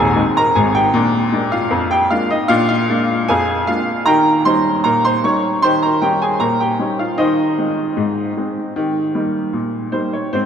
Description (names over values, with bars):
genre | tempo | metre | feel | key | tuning
ragtime piano | 77 BPM | 2/4 | straight | unclear | A4 = 440 Hz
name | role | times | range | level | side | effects
clear upright piano | solo | 0.0-10.5 s | Eb1 to Db6 | -14 LUFS | equal | none
room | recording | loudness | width
wet cathedral reverb, RT60 6.3 s | in a vast, echoing space | -14 LUFS | side -8 dB against mid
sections
0.0-10.3 A section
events
none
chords
0.0 Ab; 0.9 Bb7; 4.1 Eb7; 7.2 Ab/Eb; 8.8 Eb